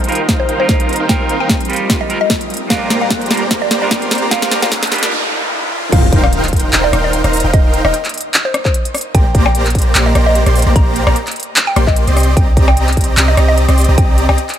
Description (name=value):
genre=future bass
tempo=149 BPM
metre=4/4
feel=swing 55% on 16ths, half-time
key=unclear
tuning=A4 = 442 Hz
part: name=clean electric guitar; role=accompaniment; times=0.0-5.1 s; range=G3 to Bb4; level=-23 LUFS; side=right 3 dB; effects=spring reverb, sidechain pumping, tape echo
part: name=shimmering ambient pad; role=sustained chords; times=0.1-5.9 s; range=G3 to Bb4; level=-28 LUFS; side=left 1 dB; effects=none
part: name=dense compressed supersaw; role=riff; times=0.0-14.4 s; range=Bb3 to C6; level=-18 LUFS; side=right 1 dB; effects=sidechain pumping, low-pass filter
part: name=trap drum kit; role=drums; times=0.0-14.6 s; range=crash cymbal, handclaps, hi-hat, rim click, snare drum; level=-17 LUFS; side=equal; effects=overdrive
part: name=riser, noise sweep and impact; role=sound effects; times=1.5-7.5 s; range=none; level=-23 LUFS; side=equal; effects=none
part: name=electronic kick drum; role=drums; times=0.3-14.1 s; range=none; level=-14 LUFS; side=equal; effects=none
part: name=mallet-like synth pluck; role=melody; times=0.4-14.5 s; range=C5 to Bb5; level=-21 LUFS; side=equal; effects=chorus, phaser, sidechain pumping, dub echo
part: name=warm 808-style bass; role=bass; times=5.9-14.4 s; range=Eb1 to C2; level=-14 LUFS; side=equal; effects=sidechain pumping
room=light reverb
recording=high-pass filter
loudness=-11 LUFS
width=side -10 dB against mid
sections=0.0-5.9 A section; 5.9-14.6 B section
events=build-up 0.0-5.9; drum fill 0.0-5.1; filter sweep 0.0-5.9; riser 1.5-5.9; noise sweep 4.3-5.9; break 5.1-5.9; drop 5.9-14.6; impact 5.9-7.5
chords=0.0 Eb69; 2.7 Bb6; 5.7 Eb69; 9.1 Bb6; 12.2 Cm9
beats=0.29 0.69 | 1.09 1.50 1.90 2.30 | 2.70 3.11 3.51 3.91 | 4.31 4.72 5.12 5.52 | 5.92 6.33 6.73 7.13 | 7.54 7.94 8.34 8.74 | 9.15 9.55 9.95 10.35 | 10.76 11.16 11.56 11.96 | 12.37 12.77 13.17 13.57 | 13.98 14.38